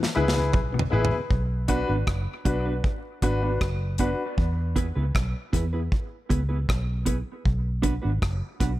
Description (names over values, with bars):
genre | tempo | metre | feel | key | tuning
dub reggae | 78 BPM | 4/4 | straight | B dorian | A4 = 440 Hz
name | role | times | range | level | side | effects
overdriven tonewheel organ | accompaniment | 0.0-1.2 s | E2 to E4 | -33 LUFS | left 2 dB | slow rotary speaker
mellow electric guitar | arpeggios | 0.0-1.1 s | G#2 to D3 | -33 LUFS | left 6 dB | dub echo
deep reggae drum kit | drums | 0.0-8.8 s | hi-hat, kick drum, rim click, snare drum, toms | -26 LUFS | equal | none
warm baby grand piano | stabs | 0.2-4.2 s | D4 to B4 | -29 LUFS | left 3 dB | dub echo
vintage muted fingered electric bass | bass | 0.2-8.8 s | F#1 to E2 | -26 LUFS | equal | none
mellow electric guitar | accompaniment | 1.7-8.7 s | B3 to B4 | -30 LUFS | right 3 dB | lush chorus, dub echo
room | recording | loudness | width
small room ambience | none | -23 LUFS | side -16 dB against mid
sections
0.0-1.3 A section; 1.3-8.8 B section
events
break 0.0-1.3; drum fill 0.0-1.3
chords
0.0 E; 1.3 Bm; 4.4 E; 7.5 Bm